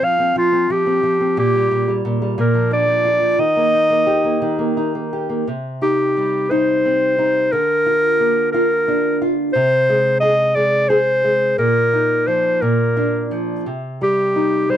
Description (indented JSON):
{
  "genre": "children's music, lullaby",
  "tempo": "59 BPM (dotted quarters)",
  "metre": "6/8",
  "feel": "rubato",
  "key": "unclear",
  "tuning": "A4 = 440 Hz",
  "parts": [
    { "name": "clear clarinet", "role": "melody", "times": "0.0-14.8 s", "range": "F4 to F5", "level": "-16 LUFS", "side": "equal", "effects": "none" },
    { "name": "nylon-string guitar", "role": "accompaniment", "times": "0.0-14.8 s", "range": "Bb2 to Ab4", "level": "-20 LUFS", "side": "equal", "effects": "none" }
  ],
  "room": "little or no reverb",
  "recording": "dry, close 1970s-style studio recording",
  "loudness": "-15 LUFS",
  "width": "side -10 dB against mid",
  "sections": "0.0-5.5 A section; 5.5-14.8 B section",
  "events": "none",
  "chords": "0.0 F5; 1.4 Gm/Bb; 2.4 Bb; 3.4 Eb; 5.5 Cm; 7.5 Bb/D; 9.5 Ab/C; 11.6 Bbsus4; 12.6 Bb; 13.7 Cm"
}